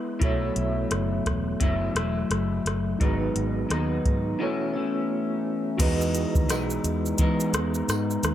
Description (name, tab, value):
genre	indie pop, bedroom pop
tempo	86 BPM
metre	4/4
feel	swing 60% on 16ths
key	unclear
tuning	A4 = 440 Hz
part	electric guitar through a small old amp	accompaniment	0.0-8.3 s	G#2 to E4	-27 LUFS	left 2 dB	analog chorus, warbly pitch drift
part	mellow reed electric piano	accompaniment	0.0-8.3 s	B3 to D#5	-33 LUFS	right 4 dB	fast tremolo, cassette tape
part	vintage muted fingered electric bass	bass	0.2-8.3 s	E1 to E3	-28 LUFS	equal	none
part	soft vintage rhythm box	drums	0.2-8.3 s	crash cymbal, hi-hat, kick drum, rim click, shaker	-27 LUFS	equal	none
part	tambourine	percussion	6.5-8.1 s	none	-38 LUFS	right 8 dB	none
room	light reverb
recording	none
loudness	-23 LUFS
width	side -11 dB against mid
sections	0.0-5.8 A section; 5.8-8.3 B section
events	break 4.4-5.8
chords	0.2 B7sus4; 3.0 G#m7; 4.4 B9sus4; 5.8 Emaj7